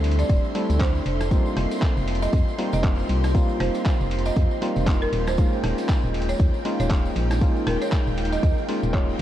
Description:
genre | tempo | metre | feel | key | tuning
deep house | 118 BPM | 4/4 | swing 58% on 16ths | unclear | A4 = 440 Hz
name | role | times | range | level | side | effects
percussive organ stab | stabs | 0.0-9.2 s | G3 to F4 | -27 LUFS | left 1 dB | chorus, analog delay
organ-like FM bass | bass | 0.0-9.2 s | D1 to F2 | -24 LUFS | equal | tube saturation, sidechain pumping
dusty soul sampler-style drum kit | drums | 0.0-9.2 s | handclaps, hi-hat, ride cymbal, rim click | -33 LUFS | equal | overdrive
granular cloud pad | texture | 0.0-9.2 s | D4 to Bb5 | -33 LUFS | equal | built-in reverb, sidechain pumping
string machine, violins | texture | 0.0-9.2 s | G5 to C6 | -39 LUFS | equal | ensemble chorus, sidechain pumping
folk marimba with hard mallets | melody | 0.2-9.2 s | Bb4 to Eb5 | -31 LUFS | right 3 dB | analog delay
tambourine | percussion | 0.2-9.2 s | none | -47 LUFS | right 4 dB | none
electronic kick drum | drums | 0.3-9.1 s | none | -21 LUFS | equal | overdrive
room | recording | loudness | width
light reverb | cassette tape | -20 LUFS | side -12 dB against mid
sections
0.0-9.2 A section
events
none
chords
0.0 D9sus4; 1.1 F9sus4; 5.4 Eb9sus4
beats
0.30 0.80 | 1.31 1.82 2.33 2.84 | 3.35 3.85 4.36 4.87 | 5.38 5.89 6.40 6.91 | 7.42 7.92 8.43 8.94

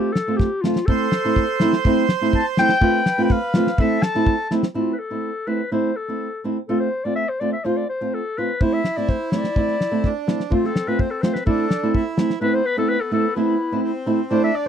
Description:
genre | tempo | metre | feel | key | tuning
klezmer | 124 BPM | 2/4 | straight | A minor | A4 = 439 Hz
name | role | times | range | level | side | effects
warm clarinet | melody | 0.0-14.7 s | E4 to A5 | -23 LUFS | left 4 dB | none
flamenco guitar | accompaniment | 0.0-14.7 s | A3 to F4 | -21 LUFS | right 2 dB | none
damped 70s drum kit | drums | 0.2-4.7, 8.6-12.4 s | kick drum, snare drum | -20 LUFS | left 1 dB | none
accordion | second line | 0.9-4.5, 8.6-14.7 s | B3 to C5 | -27 LUFS | right 7 dB | none
room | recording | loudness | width
light reverb | dry, close 1970s-style studio recording | -18 LUFS | side -8 dB against mid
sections
0.0-4.8 A section; 4.8-12.4 B section; 12.4-14.7 C section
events
speeding up 0.0-14.7; clarinet solo 0.0-4.8; drum fill 0.4-0.9, 4.5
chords
0.0 F; 0.9 Am; 2.8 F; 3.8 Am; 6.7 F; 8.6 Am; 10.5 F; 11.5 Am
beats
0.40 | 0.88 1.37 | 1.85 2.33 | 2.82 3.30 | 3.78 4.27 | 4.75 5.23 | 5.72 6.20 | 6.68 7.17 | 7.65 8.13 | 8.61 9.09 | 9.57 10.04 | 10.52 11.00 | 11.47 11.95 | 12.42 12.89 | 13.37 13.84 | 14.31

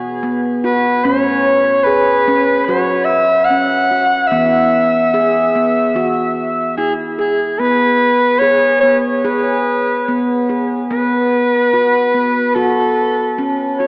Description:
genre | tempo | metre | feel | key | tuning
world meditative, meditative tuned percussion | 73 BPM | 4/4 | straight | unclear | A4 = 436 Hz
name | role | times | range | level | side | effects
warm soprano saxophone | melody | 0.0-13.9 s | G#4 to F#5 | -13 LUFS | equal | cassette tape, tape echo
handpan | arpeggios | 0.0-13.9 s | A2 to G#4 | -17 LUFS | equal | cassette tape
room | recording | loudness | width
wet spring reverb, RT60 2.7 s | home recording on cassette, AM radio sound | -12 LUFS | side -28 dB against mid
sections
0.0-7.6 A section; 7.6-13.9 B section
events
none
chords
0.0 B5; 1.0 A; 2.7 F#5; 4.3 E; 7.6 G#m/B; 10.9 B5; 12.6 F#m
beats
0.22 | 1.04 1.86 2.67 3.49 | 4.31 5.13 5.95 6.77 | 7.60 8.42 9.24 10.07 | 10.90 11.73 12.55 13.38

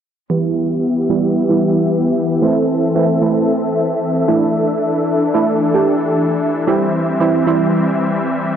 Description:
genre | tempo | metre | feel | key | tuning
pop | 113 BPM | 4/4 | straight | E minor | A4 = 440 Hz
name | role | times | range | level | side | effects
analog pluck | accompaniment | 0.3-8.2 s | E3 to G4 | -17 LUFS | right 5 dB | chorus, low-pass filter
supersaw chords | sustained chords | 0.3-8.6 s | E3 to E5 | -16 LUFS | left 2 dB | low-pass filter
room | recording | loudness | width
moderate lush hall reverb, RT60 2.8 s | home recording on cassette | -14 LUFS | side -8 dB against mid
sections
0.3-8.6 A section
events
filter sweep 0.3-8.6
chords
0.3 Em; 2.4 Am/E; 4.3 Dsus2; 6.7 C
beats
| 0.30 0.83 1.36 1.89 | 2.42 2.96 3.49 4.02 | 4.55 5.08 5.61 6.14 | 6.67 7.20 7.73 8.26

